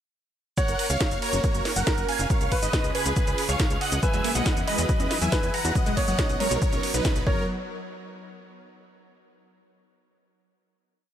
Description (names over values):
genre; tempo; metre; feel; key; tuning
uplifting trance; 139 BPM; 4/4; straight; F# major; A4 = 441 Hz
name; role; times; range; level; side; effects
big supersaw lead; melody; 0.6-7.4 s; D#4 to A#5; -30 LUFS; right 1 dB; phaser, sidechain pumping, ping-pong delay
clear grand piano; second line; 0.6-7.4 s; A#4 to C#5; -33 LUFS; right 1 dB; ping-pong delay
plucky unison lead; second line; 0.6-7.4 s; A#4 to A#5; -35 LUFS; equal; cassette tape, sidechain pumping, ping-pong delay
supersaw pad; sustained chords; 0.6-7.5 s; C#3 to C#5; -37 LUFS; right 1 dB; sidechain pumping
electronic kick drum; drums; 0.6-7.4 s; none; -26 LUFS; equal; none
techno drum kit; drums; 0.6-7.2 s; hi-hat, ride cymbal, shaker, snare drum; -30 LUFS; right 1 dB; none
tight sequencer bass; bass; 0.7-7.5 s; F#1 to E2; -29 LUFS; equal; sidechain pumping
wide unison pluck; arpeggios; 4.0-7.5 s; F#3 to F#4; -32 LUFS; left 1 dB; sidechain pumping, ping-pong delay
room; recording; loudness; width
digital ambience; none; -22 LUFS; side -10 dB against mid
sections
0.6-7.5 drop; 7.5-9.2 final hit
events
drop 0.6-7.5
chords
0.6 F#; 2.3 C#; 4.0 E; 5.8 B; 7.3 F#; 7.5 N.C.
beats
| 0.57 1.01 1.44 1.87 | 2.30 2.73 3.17 3.60 | 4.03 4.46 4.89 5.32 | 5.75 6.19 6.62 7.05